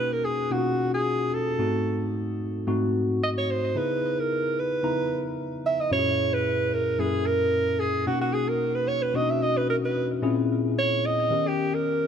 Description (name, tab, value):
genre	pop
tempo	111 BPM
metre	4/4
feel	swing 54% on 16ths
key	unclear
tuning	A4 = 440 Hz
part	breathy alto saxophone	melody	0.0-12.1 s	F#4 to E5	-26 LUFS	right 3 dB	none
part	tine electric piano	accompaniment	0.0-12.1 s	F#2 to A#5	-26 LUFS	left 3 dB	overdrive, wide subtle chorus
room	moderate plate reverb, RT60 3.3 s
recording	none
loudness	-23 LUFS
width	side -8 dB against mid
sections	0.0-12.1 A section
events	alto saxophone solo 0.0-12.1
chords	0.0 Bmaj9; 1.6 G#7b9; 3.7 C#m9; 5.9 F#7; 8.1 Bmaj7; 10.2 A#m7b5; 11.3 D#7b13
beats	0.51 1.05 | 1.59 2.13 2.67 3.21 | 3.75 4.29 4.83 5.37 | 5.91 6.45 6.99 7.53 | 8.07 8.61 9.15 9.69 | 10.23 10.77 11.31 11.85